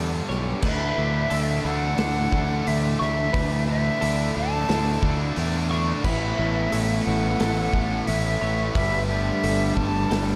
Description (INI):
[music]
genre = rock, shoegaze and dream pop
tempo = 89 BPM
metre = 4/4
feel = straight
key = unclear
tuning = A4 = 440 Hz
[part]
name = twelve-string electric guitar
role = arpeggios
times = 0.0-10.4 s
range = A4 to C#6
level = -36 LUFS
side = equal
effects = analog chorus, slapback echo
[part]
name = biting overdriven guitar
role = riff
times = 0.0-10.4 s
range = G2 to E4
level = -33 LUFS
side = equal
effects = ensemble chorus
[part]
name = biting overdriven guitar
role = riff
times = 0.0-10.4 s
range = G2 to D4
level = -34 LUFS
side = equal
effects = none
[part]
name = electric guitar through a small old amp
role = riff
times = 0.0-10.4 s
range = D3 to D5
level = -33 LUFS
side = equal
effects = reverse reverb
[part]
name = growling fingered electric bass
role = bass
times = 0.0-10.4 s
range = G1 to E2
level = -28 LUFS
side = equal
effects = overdrive
[part]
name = loose indie drum kit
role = drums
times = 0.3-10.3 s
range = crash cymbal, hi-hat, kick drum, snare drum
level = -32 LUFS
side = equal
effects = none
[part]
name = bright silver concert flute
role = melody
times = 0.7-10.4 s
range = E5 to A5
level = -30 LUFS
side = equal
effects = slapback echo
[sound]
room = studio ambience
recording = dark, warm production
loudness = -23 LUFS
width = mono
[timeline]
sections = 0.6-10.4 A section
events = none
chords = 0.0 Gadd9; 0.6 Dsus2; 6.0 Aadd9; 8.8 Gadd9